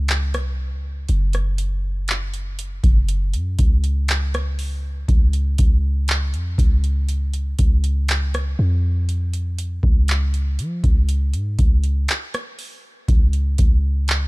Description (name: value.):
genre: contemporary R&B.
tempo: 60 BPM.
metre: 4/4.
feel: straight.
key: Db major.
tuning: A4 = 439 Hz.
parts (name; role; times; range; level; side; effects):
warm 808-style bass; bass; 0.0-14.3 s; Gb1 to F3; -20 LUFS; equal; none.
booming analog drum machine; drums; 0.1-14.3 s; handclaps, hi-hat, kick drum, rim click; -19 LUFS; equal; none.
room: little or no reverb.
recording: none.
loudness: -18 LUFS.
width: side -23 dB against mid.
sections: 0.0-5.1 A section; 5.1-14.3 A section.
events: none.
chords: none.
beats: 0.08 | 1.08 2.08 3.08 4.08 | 5.08 6.08 7.08 8.08 | 9.08 10.08 11.08 12.08 | 13.08 14.08.